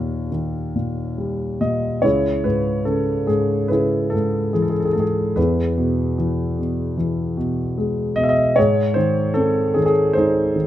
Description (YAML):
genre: classical, lyrical solo piano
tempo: 69-77 BPM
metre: 4/4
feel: rubato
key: C# minor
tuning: A4 = 444 Hz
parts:
  - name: dark concert grand piano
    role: solo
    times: 0.0-10.7 s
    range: C#2 to E5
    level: -18 LUFS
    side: equal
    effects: none
room: light reverb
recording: close, detailed microphones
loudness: -18 LUFS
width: side -12 dB against mid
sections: 0.0-10.7 A section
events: none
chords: 0.0 D#; 2.0 C#m; 5.4 E; 8.6 G#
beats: 0.33 1.19 | 2.04 2.88 3.71 4.55 | 5.37 6.19 6.99 7.78 | 8.57 9.36 10.16